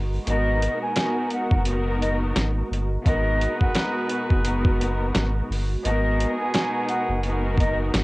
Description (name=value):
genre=hip hop, boom-bap hip-hop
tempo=86 BPM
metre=4/4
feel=swing 55% on 16ths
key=G# minor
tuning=A4 = 440 Hz
part: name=hollow soft pad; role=sustained chords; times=0.0-8.0 s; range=B2 to F#4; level=-35 LUFS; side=right 2 dB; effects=chorus, high-pass filter, low-pass filter, cassette tape
part: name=sub bass with octave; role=bass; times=0.0-8.0 s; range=F#1 to G#1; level=-25 LUFS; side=equal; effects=none
part: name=mellow silver concert flute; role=melody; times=0.3-7.8 s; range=D#5 to G#5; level=-27 LUFS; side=equal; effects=high-pass filter, low-pass filter, cassette tape
part: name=muted studio string section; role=accompaniment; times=0.3-8.0 s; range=B3 to A#4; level=-27 LUFS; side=left 1 dB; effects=cassette tape, high-pass filter, low-pass filter
part: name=dusty soul sampler-style drum kit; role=drums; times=0.3-8.0 s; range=hi-hat, kick drum, snare drum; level=-23 LUFS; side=equal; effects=cassette tape
part: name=bright horn section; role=stabs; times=3.1-8.0 s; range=B3 to B4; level=-32 LUFS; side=right 1 dB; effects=high-pass filter, low-pass filter, cassette tape, analog delay
room=little or no reverb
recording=home recording on cassette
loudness=-21 LUFS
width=side -21 dB against mid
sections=0.0-8.0 A section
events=kick muted 1.7-3.1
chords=0.0 G#m7